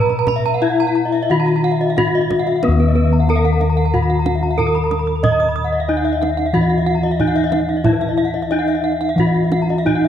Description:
Balinese gamelan; 85-92 BPM; 4/4; straight; Eb pelog; A4 = 442 Hz
gamelan-type bronze metallophone; melody; 0.0-10.1 s; Cb4-40c to Eb5; -18 LUFS; equal
gamelan-type bronze metallophone; arpeggios; 0.0-10.0 s; Cb5-40c to Eb6; -25 LUFS; right 5 dB
gamelan-type bossed gongs; bass; 0.0-10.1 s; Eb2 to Eb5; -18 LUFS; left 1 dB
gamelan-type bronze metallophone; arpeggios; 0.1-10.1 s; Cb5-40c to Eb6; -24 LUFS; left 7 dB
kendang; percussion; 0.1-10.1 s; -24 LUFS; right 2 dB
moderate scoring stage reverb, RT60 1.7 s; dark, warm production; -14 LUFS; side -9 dB against mid
0.0-2.6 A section; 2.6-10.1 B section
0.61 1.30 1.97 | 2.63 3.28 3.93 4.58 | 5.24 5.89 6.54 7.19 | 7.84 8.50 9.17 9.86

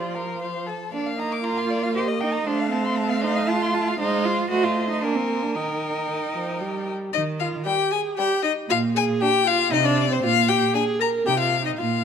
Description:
quick classical-period movement for string quartet; 116 BPM; 3/4; straight; Eb major from 4.0 s; A4 = 438 Hz
rich violin; melody; 0.0-12.0 s; C5 to Bb5; -25 LUFS; left 10 dB
rich violin; second line; 0.0-11.3 s; G3 to D6; -30 LUFS; left 3 dB
warm viola; accompaniment; 0.0-12.0 s; Eb3 to Bb4; -26 LUFS; right 3 dB
rich cello; bass; 0.0-12.0 s; Bb2 to G4; -26 LUFS; right 3 dB
light reverb; close, detailed microphones; -20 LUFS; side -7 dB against mid
0.0-7.1 A section; 7.1-12.0 B section
0.4 F; 0.9 Bb; 2.0 Cm7/Bb; 2.5 F/A; 4.0 Fm7/Ab; 4.5 Adim7; 5.0 Bb7; 5.6 Eb; 8.7 Bb5; 9.7 Cmadd9; 10.2 Bb5; 11.3 Cm
0.41 | 0.93 1.45 1.96 | 2.47 2.99 3.50 | 4.00 4.51 5.03 | 5.55 6.08 6.61 | 7.14 7.66 8.18 | 8.70 9.21 9.73 | 10.24 10.75 11.26 | 11.78

